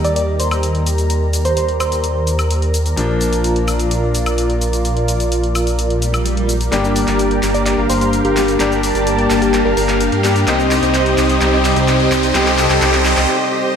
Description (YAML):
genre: EDM, festival progressive house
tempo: 128 BPM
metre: 4/4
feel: straight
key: G minor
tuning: A4 = 440 Hz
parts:
  - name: soft struck synth lead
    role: melody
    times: 0.0-2.3, 7.5-9.8 s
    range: G4 to D5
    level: -22 LUFS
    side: equal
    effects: chorus, tape echo
  - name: bright baby grand piano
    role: accompaniment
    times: 0.0-13.8 s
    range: F3 to G4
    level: -21 LUFS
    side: left 2 dB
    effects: tape echo
  - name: lush unison pad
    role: sustained chords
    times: 0.0-13.3 s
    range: C3 to Bb5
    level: -20 LUFS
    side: equal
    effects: chorus
  - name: detuned saw bass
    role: bass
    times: 0.0-13.3 s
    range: G1 to G2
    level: -19 LUFS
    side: equal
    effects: none
  - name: big-room dance drum kit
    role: drums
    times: 0.0-13.3 s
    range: cabasa, handclaps, hi-hat, woodblock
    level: -22 LUFS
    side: left 1 dB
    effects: studio reverb
  - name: swell and riser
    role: sound effects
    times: 6.0-13.3 s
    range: none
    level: -27 LUFS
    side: left 1 dB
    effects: none
  - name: dense compressed supersaw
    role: riff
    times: 6.7-13.7 s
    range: G4 to F5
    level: -19 LUFS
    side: equal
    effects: lush chorus, low-pass filter, tape echo
room: wet lush hall reverb, RT60 1.6 s, digital ambience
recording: dreamy mix soaked in reverb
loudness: -13 LUFS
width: side -7 dB against mid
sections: 0.0-6.7 A section; 6.7-13.8 B section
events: swell 6.0-6.7; build-up 6.7-13.8; drum fill 6.7-13.3; riser 6.7-13.3; filter sweep on supersaw synth 6.7-13.8; break 13.3-13.8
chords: 0.0 Eb; 3.0 Bb; 6.7 Gm; 10.5 Cm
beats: 0.16 0.63 | 1.10 1.57 2.04 2.51 | 2.98 3.44 3.91 4.38 | 4.85 5.32 5.79 6.26 | 6.72 7.19 7.66 8.13 | 8.60 9.07 9.54 10.01 | 10.47 10.94 11.41 11.88 | 12.35 12.82 13.29 13.76